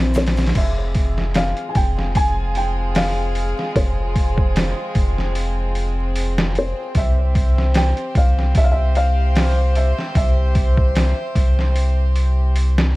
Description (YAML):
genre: trip hop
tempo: 75 BPM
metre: 4/4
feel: swing 55% on 16ths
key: F harmonic minor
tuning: A4 = 440 Hz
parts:
  - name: warm studio violin section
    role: sustained chords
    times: 0.0-13.0 s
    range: G3 to C5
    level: -27 LUFS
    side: equal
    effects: none
  - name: large celesta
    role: arpeggios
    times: 0.0-0.6 s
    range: C4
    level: -28 LUFS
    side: left 1 dB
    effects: low-pass filter, tape echo
  - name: round analog bass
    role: bass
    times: 0.0-13.0 s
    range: F1 to C2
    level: -18 LUFS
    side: equal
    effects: none
  - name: trip hop sampler-style drum kit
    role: drums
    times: 0.1-12.9 s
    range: crash cymbal, hi-hat, kick drum, snare drum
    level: -20 LUFS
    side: equal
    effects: overdrive, small room ambience
  - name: egg shaker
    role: percussion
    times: 0.1-0.5 s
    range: none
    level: -47 LUFS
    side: left 5 dB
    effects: none
  - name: felt-muted upright piano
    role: melody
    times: 0.2-12.5 s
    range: C5 to Ab5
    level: -25 LUFS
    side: equal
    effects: tape echo
room: small room ambience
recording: vinyl crackle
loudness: -16 LUFS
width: side -20 dB against mid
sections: 0.6-13.0 A section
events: none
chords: 0.0 C; 0.6 Fm; 7.0 C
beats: | 0.55 1.35 2.15 2.95 | 3.75 4.55 5.35 6.15 | 6.95 7.75 8.55 9.35 | 10.15 10.95 11.75 12.55